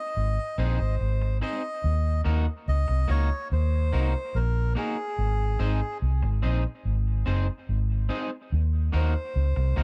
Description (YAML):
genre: roots reggae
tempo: 72 BPM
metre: 4/4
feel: straight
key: Eb dorian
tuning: A4 = 440 Hz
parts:
  - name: melodica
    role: melody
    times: 0.0-9.8 s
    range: Ab4 to Eb5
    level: -36 LUFS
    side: equal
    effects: dub echo
  - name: vintage muted fingered electric bass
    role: bass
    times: 0.2-9.8 s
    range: Gb1 to Eb2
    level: -26 LUFS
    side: equal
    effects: none
  - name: electric guitar at the edge of break-up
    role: accompaniment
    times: 0.6-9.8 s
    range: Bb3 to C5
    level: -37 LUFS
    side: equal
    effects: dub echo
room: little or no reverb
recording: dry, close 1970s-style studio recording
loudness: -26 LUFS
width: mono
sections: 0.0-1.8 A section; 1.8-9.8 B section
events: none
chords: 0.0 Ab; 1.8 Ebm; 5.2 Ab; 8.5 Ebm